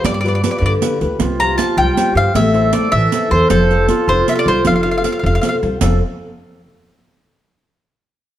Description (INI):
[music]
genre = italian folk, Italian serenade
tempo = 104 BPM (dotted quarters)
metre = 6/8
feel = straight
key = F major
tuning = A4 = 439 Hz
[part]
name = mandolin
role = melody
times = 0.0-5.6 s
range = A4 to Bb5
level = -17 LUFS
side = left 1 dB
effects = none
[part]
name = nylon-string guitar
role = accompaniment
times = 0.0-6.0 s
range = F2 to F5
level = -19 LUFS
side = left 2 dB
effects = none
[part]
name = upright bass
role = bass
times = 0.0-6.0 s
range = F1 to G2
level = -18 LUFS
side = equal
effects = none
[part]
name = riq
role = percussion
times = 0.0-6.0 s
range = none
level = -23 LUFS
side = right 7 dB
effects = none
[part]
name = mellow clarinet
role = second line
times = 1.2-6.0 s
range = F4 to C5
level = -21 LUFS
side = right 4 dB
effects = none
[sound]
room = moderate recital hall reverb, RT60 1.6 s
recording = none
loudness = -13 LUFS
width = side -12 dB against mid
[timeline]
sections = 0.0-5.8 A section; 5.8-7.0 B section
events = none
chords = 0.0 G7; 1.2 Csus4; 2.4 Am; 3.5 F